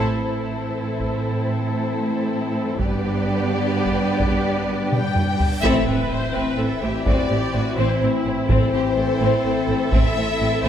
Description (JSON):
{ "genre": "cinematic, epic orchestral film score", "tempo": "84 BPM (dotted quarters)", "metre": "6/8", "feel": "straight", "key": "unclear", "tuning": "A4 = 440 Hz", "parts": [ { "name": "warm symphonic violin section", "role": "melody", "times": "0.0-10.7 s", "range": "C5 to G5", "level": "-27 LUFS", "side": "left 4 dB", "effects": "none" }, { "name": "rich symphonic violin section", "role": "second line", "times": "0.0-10.7 s", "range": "C4 to B4", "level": "-28 LUFS", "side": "left 2 dB", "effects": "none" }, { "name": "clear symphonic viola section", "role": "accompaniment", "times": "0.0-10.7 s", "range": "E4 to C5", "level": "-30 LUFS", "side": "right 1 dB", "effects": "none" }, { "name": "mellow French horn section", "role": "sustained chords", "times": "0.0-10.7 s", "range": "D3 to C4", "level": "-27 LUFS", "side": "left 4 dB", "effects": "none" }, { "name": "warm studio string section", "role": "sustained chords", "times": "0.0-5.6 s", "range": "A3 to D5", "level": "-27 LUFS", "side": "equal", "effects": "none" }, { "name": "rich symphonic double bass section", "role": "bass", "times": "0.0-0.4, 2.8-3.2, 5.6-10.7 s", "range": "G1 to A1", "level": "-27 LUFS", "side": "right 3 dB", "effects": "none" }, { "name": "warm symphonic cello section", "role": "bass", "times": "0.0-10.7 s", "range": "G2 to A2", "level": "-25 LUFS", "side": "right 2 dB", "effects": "none" }, { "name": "taiko ensemble", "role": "drums", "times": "1.0-10.4 s", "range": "none", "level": "-23 LUFS", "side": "equal", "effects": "none" }, { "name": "reverse cymbal and impact", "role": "sound effects", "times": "5.2-7.1 s", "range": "none", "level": "-37 LUFS", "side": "equal", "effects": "none" } ], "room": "moderate scoring stage reverb, RT60 1.9 s", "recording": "none", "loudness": "-18 LUFS", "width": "side -9 dB against mid", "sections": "0.0-5.6 A section; 5.6-10.7 B section", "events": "band accent 0.0-0.4, 5.6-6.1; drum fill 4.9-5.6; reverse cymbal 5.2-5.6; impact 5.6-7.1", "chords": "0.0 Am; 2.8 G; 5.6 Am", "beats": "0.65 | 1.36 2.07 | 2.79 3.50 | 4.22 4.93 | 5.64 6.36 | 7.07 7.79 | 8.50 9.21 | 9.93 10.64" }